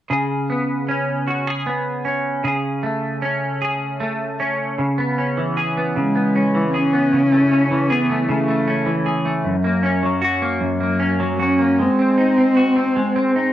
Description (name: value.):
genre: pop.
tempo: 51 BPM (dotted quarters).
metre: 6/8.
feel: straight.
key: C# minor.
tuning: A4 = 439 Hz.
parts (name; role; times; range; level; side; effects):
semi-hollow electric guitar; accompaniment; 0.1-13.5 s; F#2 to G#4; -19 LUFS; equal; double-tracked left and right, cassette tape.
dark cello; melody; 6.0-13.5 s; F#3 to C#4; -18 LUFS; equal; cassette tape.
room: moderate spring reverb, RT60 1.2 s.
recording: home recording on cassette.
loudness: -17 LUFS.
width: side -12 dB against mid.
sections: 0.1-4.8 A section; 4.8-13.5 B section.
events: none.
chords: 0.1 C#5; 2.4 Amaj7/C#; 4.8 C#m7; 7.1 Amaj7/C#; 9.5 F#; 11.8 G#7.